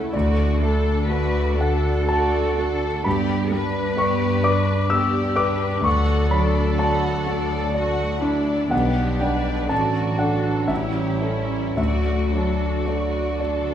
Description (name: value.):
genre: classical, romantic movement for piano and orchestra.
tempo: 53-65 BPM.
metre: 3/4.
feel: rubato.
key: D major.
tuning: A4 = 437 Hz.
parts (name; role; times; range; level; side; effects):
warm concert grand piano; melody; 0.0-13.7 s; A1 to E6; -22 LUFS; equal; none.
warm studio violin section; melody; 0.0-13.7 s; A4 to F#5; -34 LUFS; left 3 dB; none.
rich studio violin section; second line; 0.0-13.7 s; C#4 to B4; -33 LUFS; left 1 dB; none.
warm studio viola section; accompaniment; 0.0-13.7 s; A3 to E4; -31 LUFS; right 1 dB; none.
dark French horn section; sustained chords; 0.0-13.7 s; F#3 to F#4; -29 LUFS; equal; none.
rich chamber cello section; bass; 0.0-13.7 s; D4 to B4; -30 LUFS; left 1 dB; none.
rich studio double bass section; bass; 0.0-13.7 s; A1 to G2; -27 LUFS; right 1 dB; none.
room: wet recital hall reverb, RT60 1.5 s.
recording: heard from further back in the room.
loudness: -19 LUFS.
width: side -10 dB against mid.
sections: 0.0-13.7 A section.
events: none.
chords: 0.1 D; 3.1 G; 5.9 D; 8.7 G/B; 9.7 D/A; 10.7 A7; 11.8 D.